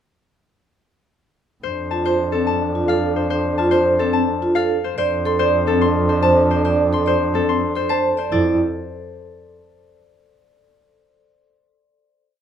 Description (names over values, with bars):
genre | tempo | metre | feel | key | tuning
classical, minimalist pattern music | 108 BPM | 3/4 | straight | F major | A4 = 440 Hz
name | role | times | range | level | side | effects
Celtic harp | melody | 1.6-10.0 s | A4 to C6 | -22 LUFS | left 8 dB | none
clear French horn | second line | 1.6-8.1 s | D4 | -24 LUFS | right 1 dB | none
warm double bass | bass | 1.6-8.6 s | F2 | -24 LUFS | right 3 dB | none
vibraphone with soft mallets | arpeggios | 1.9-8.6 s | C4 to D5 | -19 LUFS | right 3 dB | none
room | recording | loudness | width
moderate large studio reverb, RT60 1.0 s | none | -16 LUFS | side -8 dB against mid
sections
1.6-8.3 A section; 8.3-10.0 final chord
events
none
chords
1.6 F6; 8.3 F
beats
| 1.64 2.20 2.75 | 3.31 3.86 4.42 | 4.97 5.53 6.09 | 6.64 7.20 7.75 | 8.31 8.86 9.42